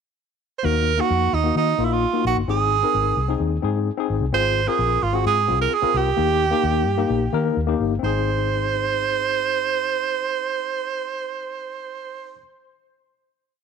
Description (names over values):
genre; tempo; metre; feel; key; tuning
uptempo 1960s-style soul; 130 BPM; 4/4; straight; Ab major; A4 = 440 Hz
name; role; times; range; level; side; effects
bright tenor saxophone; melody; 0.6-12.4 s; Eb4 to C5; -21 LUFS; right 9 dB; none
tine electric piano; accompaniment; 0.6-12.4 s; Bb3 to Bb4; -25 LUFS; left 12 dB; overdrive, fast stereo tremolo
vintage muted fingered electric bass; bass; 0.6-12.4 s; G1 to Eb3; -24 LUFS; left 1 dB; none
room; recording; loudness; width
light reverb, small room ambience; 1960s-style stereo with parts hard left and right; -19 LUFS; side -6 dB against mid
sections
0.0-0.7 pickup bar; 0.7-8.0 pre-chorus; 8.0-11.7 final chord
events
none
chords
0.0 N.C.; 0.7 Ebm; 2.5 Ab; 4.3 Fm/Ab; 6.2 Eb; 8.0 Ab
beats
0.19 | 0.65 1.11 1.57 2.03 | 2.49 2.95 3.41 3.87 | 4.34 4.80 5.26 5.72 | 6.18 6.64 7.10 7.56 | 8.02 8.48 8.94 9.40 | 9.86 10.32 10.78 11.24